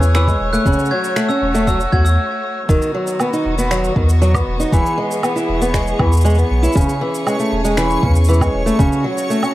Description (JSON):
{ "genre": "folktronica", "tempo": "118 BPM", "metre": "4/4", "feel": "straight", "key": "unclear", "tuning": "A4 = 440 Hz", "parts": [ { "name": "rich string quartet", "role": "sustained chords", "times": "0.0-9.5 s", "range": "C#3 to C#5", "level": "-24 LUFS", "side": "left 1 dB", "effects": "plate reverb" }, { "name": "warm sub bass", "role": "bass", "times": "0.0-8.9 s", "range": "E1 to E2", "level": "-16 LUFS", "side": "equal", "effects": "none" }, { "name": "electronic shaker, finger snaps and woodblock", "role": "drums", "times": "0.0-9.5 s", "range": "none", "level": "-26 LUFS", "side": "right 2 dB", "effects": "studio reverb" }, { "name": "glockenspiel with brass mallets", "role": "second line", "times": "0.1-2.2 s", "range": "E6 to G#6", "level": "-24 LUFS", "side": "right 1 dB", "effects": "vintage 12-bit sampler grit, ping-pong delay, plate reverb" }, { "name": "fingerpicked acoustic archtop guitar", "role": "arpeggios", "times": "0.2-9.5 s", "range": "C#3 to F#4", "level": "-18 LUFS", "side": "equal", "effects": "ping-pong delay, plate reverb" }, { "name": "electronic kick drum", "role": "drums", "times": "0.3-8.9 s", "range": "none", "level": "-18 LUFS", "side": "equal", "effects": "studio reverb" }, { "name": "backwards swelling texture", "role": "texture", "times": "4.1-9.5 s", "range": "C#5 to C#6", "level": "-29 LUFS", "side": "right 1 dB", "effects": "built-in reverb" } ], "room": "light reverb", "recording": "vinyl crackle", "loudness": "-14 LUFS", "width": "side -16 dB against mid", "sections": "0.0-2.7 A section; 2.7-9.5 A section", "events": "break 2.2-2.7", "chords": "0.0 Amaj7/E; 2.7 B/E; 4.7 E; 6.8 Amaj7/E; 8.8 F#m/E", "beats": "0.15 | 0.66 1.17 1.67 2.18 | 2.69 3.20 3.71 4.22 | 4.72 5.23 5.74 6.25 | 6.76 7.27 7.78 8.28 | 8.79 9.30" }